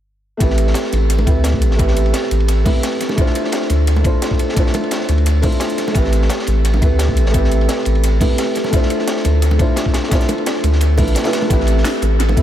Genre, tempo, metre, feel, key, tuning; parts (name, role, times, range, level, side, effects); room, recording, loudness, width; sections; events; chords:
liquid drum and bass; 173 BPM; 4/4; straight; A minor; A4 = 439 Hz
felt-muted upright piano; accompaniment; 0.4-12.4 s; A3 to C5; -19 LUFS; equal; vintage 12-bit sampler grit, analog delay
warm sub bass; bass; 0.4-12.4 s; A1 to D2; -15 LUFS; equal
crunchy breakbeat drum kit; drums; 0.4-12.4 s; hi-hat, ride cymbal, snare drum; -25 LUFS; equal; high-pass filter on cymbals, high-pass filter on hats, high-pass filter on snare, high-pass filter on room, analog delay
drum and bass drum kit; drums; 0.4-12.4 s; hi-hat, snare drum; -26 LUFS; equal; overdrive, analog delay
electronic kick drum; drums; 0.4-12.4 s; -16 LUFS; equal
bongos; percussion; 0.9-12.4 s; -28 LUFS; right 1 dB
small room ambience; echo-heavy mix; -13 LUFS; side -11 dB against mid
0.4-12.4 A section
break 11.2-11.5
0.4 Am7; 3.2 Dm7; 6.0 Am7; 8.7 Dm7; 11.5 Am7